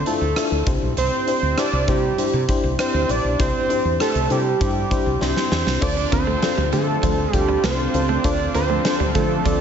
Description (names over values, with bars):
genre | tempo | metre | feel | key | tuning
1980s-style pop | 99 BPM | 4/4 | straight | unclear | A4 = 436 Hz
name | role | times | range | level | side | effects
fat analog lead | melody | 0.0-9.6 s | G4 to D5 | -22 LUFS | right 3 dB | analog delay
FM electric piano with tremolo | accompaniment | 0.0-9.6 s | D4 to D5 | -24 LUFS | left 4 dB | none
woody fretless electric bass | bass | 0.0-9.6 s | Bb1 to D3 | -24 LUFS | equal | none
huge arena drum kit | drums | 0.1-9.6 s | crash cymbal, hi-hat, kick drum, rim click, snare drum | -25 LUFS | equal | none
brassy analog pad | sustained chords | 5.8-9.6 s | C4 to F4 | -29 LUFS | equal | chorus
tambourine | percussion | 5.8-9.3 s | none | -42 LUFS | left 10 dB | none
direct-recorded clean electric guitar | riff | 6.0-9.6 s | F3 to C4 | -28 LUFS | right 7 dB | wide subtle chorus, analog delay
mellow synth brass | stabs | 6.3-9.4 s | F3 to A4 | -30 LUFS | left 2 dB | none
room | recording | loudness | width
moderate plate reverb, RT60 2.1 s | dreamy mix soaked in reverb, nothing above 7.8 kHz | -18 LUFS | side -8 dB against mid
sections
0.0-5.8 A section; 5.8-9.6 B section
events
drum fill 5.2-5.8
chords
0.0 Dmadd9; 0.7 Cadd9; 5.8 Dm7